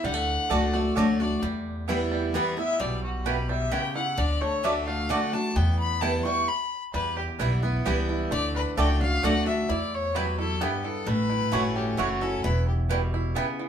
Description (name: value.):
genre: bluegrass.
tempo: 131 BPM.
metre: 3/4.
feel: straight.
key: E dorian.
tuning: A4 = 440 Hz.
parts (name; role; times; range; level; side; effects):
bluegrass banjo; melody; 0.0-13.7 s; E3 to G4; -34 LUFS; right 2 dB; none.
clear fiddle; melody; 0.0-12.8 s; F#4 to C#6; -29 LUFS; left 3 dB; none.
picked steel-string acoustic guitar; accompaniment; 0.0-13.7 s; E2 to F#4; -28 LUFS; equal; none.
upright bass; bass; 0.0-13.4 s; E1 to E2; -29 LUFS; equal; none.
mandolin; stabs; 0.5-13.5 s; A3 to A5; -29 LUFS; right 4 dB; none.
room: moderate studio reverb, RT60 0.5 s.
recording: band playing live in one room, lossy compression artefacts.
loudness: -24 LUFS.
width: side -8 dB against mid.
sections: 0.0-6.9 A section; 6.9-13.7 B section.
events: stop 6.5-6.9.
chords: 0.0 D; 1.4 Em; 4.2 D; 5.6 Em; 8.3 D; 9.7 Em; 11.1 A6; 12.4 Em.